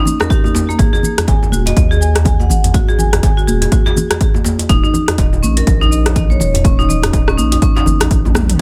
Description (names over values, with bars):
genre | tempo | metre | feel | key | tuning
afro house | 123 BPM | 4/4 | swing 59% on 16ths | unclear | A4 = 437 Hz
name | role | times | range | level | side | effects
marimba with hard mallets | arpeggios | 0.0-8.1 s | A#3 to G#5 | -21 LUFS | equal | sidechain pumping, delay
deep house drum kit | drums | 0.1-8.6 s | hi-hat, rim click, shaker, toms | -22 LUFS | equal | overdrive, small room reverb
congas | percussion | 0.1-8.5 s | none | -24 LUFS | equal | none
djembe | percussion | 0.2-8.6 s | none | -25 LUFS | equal | none
electronic kick drum | drums | 0.3-8.2 s | none | -16 LUFS | equal | small room reverb
round analog bass | bass | 0.8-8.6 s | D#1 to D#2 | -18 LUFS | equal | sidechain pumping
room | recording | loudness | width
small room ambience | none | -13 LUFS | mono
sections
0.0-8.6 A section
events
drum fill 8.2-8.6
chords
0.0 D#; 0.8 G#5; 4.7 D#7(no3)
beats
0.30 | 0.79 1.28 1.77 2.25 | 2.74 3.23 3.72 4.21 | 4.69 5.18 5.67 6.16 | 6.64 7.13 7.62 8.11